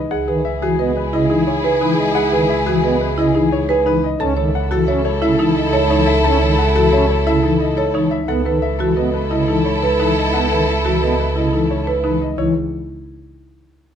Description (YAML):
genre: classical, minimalist pattern music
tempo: 176 BPM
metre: 6/4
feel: straight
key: C# minor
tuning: A4 = 440 Hz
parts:
  - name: warm grand piano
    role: melody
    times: 0.0-12.5 s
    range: G#4 to A5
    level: -23 LUFS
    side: left 9 dB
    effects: none
  - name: mellow French horn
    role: second line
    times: 0.1-12.2 s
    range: G#4 to A4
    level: -24 LUFS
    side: equal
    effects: none
  - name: rich studio string section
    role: sustained chords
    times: 0.1-12.2 s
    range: E4 to A4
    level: -23 LUFS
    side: equal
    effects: none
  - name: marimba with medium mallets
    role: arpeggios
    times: 0.1-12.5 s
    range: D#4 to C#5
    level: -19 LUFS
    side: right 3 dB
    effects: none
  - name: rich chamber double bass section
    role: bass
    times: 0.1-12.5 s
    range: C#2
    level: -22 LUFS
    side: right 2 dB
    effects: none
  - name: pipe organ, principal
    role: accompaniment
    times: 0.3-12.5 s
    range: C#3 to C#4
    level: -23 LUFS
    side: left 2 dB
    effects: none
room: moderate recital hall reverb, RT60 1.4 s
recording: close, detailed microphones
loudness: -14 LUFS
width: side -8 dB against mid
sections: 0.0-12.4 A section; 12.4-13.9 B section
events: none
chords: 0.0 C#m9; 4.2 F#m7/C# (rootless); 8.3 B9sus4/C#; 12.4 C#m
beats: | 0.11 0.45 0.79 1.13 1.47 1.81 | 2.15 2.49 2.83 3.18 3.52 3.86 | 4.20 4.54 4.88 5.22 5.56 5.90 | 6.24 6.58 6.93 7.27 7.61 7.95 | 8.29 8.63 8.97 9.31 9.65 9.99 | 10.34 10.68 11.02 11.36 11.70 12.04 | 12.38